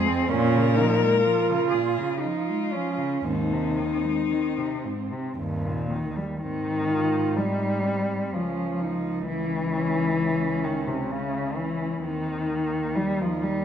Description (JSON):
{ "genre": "classical, lyrical piece for cello ensemble", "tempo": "56-66 BPM", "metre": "3/4", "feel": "rubato", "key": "Ab major", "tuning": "A4 = 440 Hz", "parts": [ { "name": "muted cello", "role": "melody", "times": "0.0-13.6 s", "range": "Bb3 to Bb4", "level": "-30 LUFS", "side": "left 7 dB", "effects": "none" }, { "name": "muted cello", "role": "second line", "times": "0.0-13.6 s", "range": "Bb3 to F4", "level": "-30 LUFS", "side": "right 9 dB", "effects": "none" }, { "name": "muted cello", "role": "accompaniment", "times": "0.0-13.6 s", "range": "G2 to C4", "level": "-27 LUFS", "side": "left 2 dB", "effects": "none" }, { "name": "muted cello", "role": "bass", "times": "0.0-13.6 s", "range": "Db2 to Bb2", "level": "-30 LUFS", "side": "right 2 dB", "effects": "none" } ], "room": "light reverb", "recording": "close, detailed microphones", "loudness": "-23 LUFS", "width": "side -9 dB against mid", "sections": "0.0-6.4 A section; 6.4-13.6 B section", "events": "none", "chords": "0.3 Bbm7; 3.2 Ab/Eb; 5.4 Eb; 6.4 Ab; 8.3 Db6; 9.3 Dbm; 12.0 Eb5" }